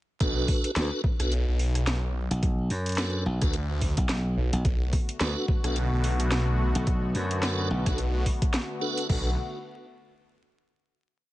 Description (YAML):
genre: glitch hop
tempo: 108 BPM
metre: 4/4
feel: swing 57% on 16ths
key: B minor pentatonic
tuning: A4 = 439 Hz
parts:
  - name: tonewheel organ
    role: stabs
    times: 0.2-9.3 s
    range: D4 to B4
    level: -32 LUFS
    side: right 1 dB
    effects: overdrive, chorus vibrato, slow rotary speaker, sidechain pumping, tape echo
  - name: phased detuned saw bass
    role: bass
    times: 0.2-9.4 s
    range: B1 to D2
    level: -26 LUFS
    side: equal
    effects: phaser
  - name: drum and bass drum kit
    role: drums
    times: 0.2-9.2 s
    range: crash cymbal, hi-hat, rim click, snare drum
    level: -33 LUFS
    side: equal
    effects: none
  - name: electronic kick drum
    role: drums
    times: 0.2-9.2 s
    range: none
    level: -26 LUFS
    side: equal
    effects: overdrive
  - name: slap bass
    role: bass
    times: 0.8-7.8 s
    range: B1 to F#2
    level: -27 LUFS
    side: equal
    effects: none
  - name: warm analog pad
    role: sustained chords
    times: 4.6-9.4 s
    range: D3 to F#4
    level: -34 LUFS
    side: left 2 dB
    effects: chorus, tremolo, sidechain pumping
room: digital ambience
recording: vinyl crackle, nothing above 10.5 kHz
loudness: -24 LUFS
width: side -16 dB against mid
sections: 0.2-9.1 drop; 9.1-11.3 final chord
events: drop 0.2-9.1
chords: 0.2 Bm7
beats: | 0.20 0.76 1.32 1.87 | 2.43 2.98 3.54 4.09 | 4.65 5.21 5.76 6.32 | 6.87 7.43 7.98 8.54 | 9.09